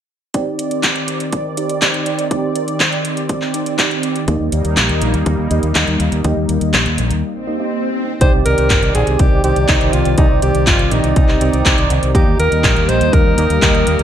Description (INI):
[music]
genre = italo disco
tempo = 122 BPM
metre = 4/4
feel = straight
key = C minor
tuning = A4 = 440 Hz
[part]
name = lush unison pad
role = sustained chords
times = 0.3-14.0 s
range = Eb3 to D5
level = -21 LUFS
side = equal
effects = chorus, phaser
[part]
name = chorused polysynth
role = stabs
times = 0.3-14.0 s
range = Bb3 to Eb5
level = -22 LUFS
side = right 5 dB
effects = none
[part]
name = electronic kick drum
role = drums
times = 0.3-13.7 s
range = none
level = -16 LUFS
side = equal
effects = high-pass filter on kick, studio reverb
[part]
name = house drum kit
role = drums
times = 0.3-14.0 s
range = handclaps, hi-hat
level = -18 LUFS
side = equal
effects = studio reverb, gated reverb
[part]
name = fingered electric bass with an envelope filter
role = bass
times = 4.3-14.0 s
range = G1 to Eb2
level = -17 LUFS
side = equal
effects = none
[part]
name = swell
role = sound effects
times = 7.4-8.2 s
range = none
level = -23 LUFS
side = left 4 dB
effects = none
[part]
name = breathy alto saxophone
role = melody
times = 8.2-14.0 s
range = Eb4 to C5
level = -18 LUFS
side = left 1 dB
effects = vintage 12-bit sampler grit, tape echo
[sound]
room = light reverb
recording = none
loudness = -13 LUFS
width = side -10 dB against mid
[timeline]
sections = 0.3-8.2 A section; 8.2-14.0 B section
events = break 7.2-8.2; swell 7.4-8.2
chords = 0.3 Cmadd9; 4.3 Eb; 8.2 Cmadd9; 12.1 Eb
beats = | 0.34 0.84 1.33 1.82 | 2.31 2.80 3.29 3.79 | 4.28 4.77 5.26 5.75 | 6.25 6.74 7.23 7.72 | 8.21 8.70 9.20 9.69 | 10.18 10.67 11.16 11.65 | 12.15 12.64 13.13 13.62